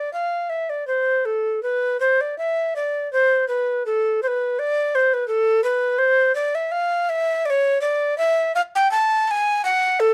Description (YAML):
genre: classical, baroque-style fantasia for unaccompanied recorder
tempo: 82 BPM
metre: 3/4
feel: rubato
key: A minor from 5.6 s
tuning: A4 = 440 Hz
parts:
  - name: mellow tenor recorder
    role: solo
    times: 0.0-10.1 s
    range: A4 to A5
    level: -21 LUFS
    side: equal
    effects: none
room: light reverb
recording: dark, warm production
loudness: -21 LUFS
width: mono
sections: 0.0-10.1 A section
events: none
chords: none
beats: 0.50 | 1.25 2.01 2.75 | 3.47 4.20 4.93 | 5.64 6.37 7.10 | 7.82 8.55 9.29 | 10.02